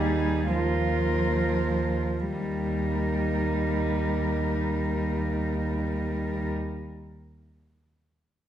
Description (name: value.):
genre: classical, lyrical piece for cello ensemble.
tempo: 33 BPM.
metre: 4/4.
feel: rubato.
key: Eb major.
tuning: A4 = 440 Hz.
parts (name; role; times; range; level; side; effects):
dark cello; melody; 0.0-6.5 s; Ab4 to Bb4; -34 LUFS; left 4 dB; none.
dark cello; second line; 0.0-6.5 s; Eb4 to F4; -32 LUFS; right 6 dB; none.
warm cello; accompaniment; 0.0-6.5 s; F3 to G3; -30 LUFS; left 2 dB; none.
dark cello; bass; 0.0-6.5 s; Eb2; -29 LUFS; right 1 dB; none.
room: wet recital hall reverb, RT60 1.4 s.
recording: recorded in a church or concert hall.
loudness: -25 LUFS.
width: side -11 dB against mid.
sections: 0.0-2.3 A section; 2.3-8.5 B section.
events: slowing down 0.0-2.3.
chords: 0.0 Bb7(no3)/Eb; 2.3 Eb.